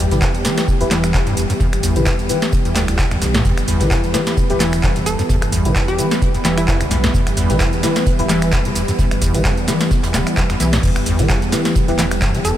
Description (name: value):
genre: acid house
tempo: 130 BPM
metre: 4/4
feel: swing 56% on 16ths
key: E minor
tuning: A4 = 442 Hz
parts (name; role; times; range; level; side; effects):
- warm analog pad; sustained chords; 0.0-12.6 s; E3 to B4; -23 LUFS; right 1 dB; chorus, sidechain pumping
- deep acid bass; riff; 0.0-12.5 s; D2 to E3; -21 LUFS; equal; overdrive, ping-pong delay
- round analog bass; bass; 0.0-12.5 s; D1 to B1; -22 LUFS; equal; tube saturation, sidechain pumping
- deep mellow chord stab; stabs; 0.1-12.0 s; E4 to B4; -25 LUFS; left 2 dB; chorus, ping-pong delay
- booming analog drum machine; drums; 0.1-12.6 s; crash cymbal, finger snaps, handclaps, hi-hat, shaker, snare drum; -21 LUFS; equal; none
- soft brush drum kit; drums; 0.1-12.6 s; hi-hat, snare drum; -36 LUFS; right 3 dB; none
- electronic kick drum; drums; 0.2-12.3 s; none; -19 LUFS; equal; none
- hollow square pluck; melody; 5.1-6.8, 12.4-12.6 s; E4 to A4; -28 LUFS; equal; chorus, ping-pong delay
room: light reverb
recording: none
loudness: -14 LUFS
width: side -12 dB against mid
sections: 0.0-12.6 A section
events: none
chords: 0.0 Em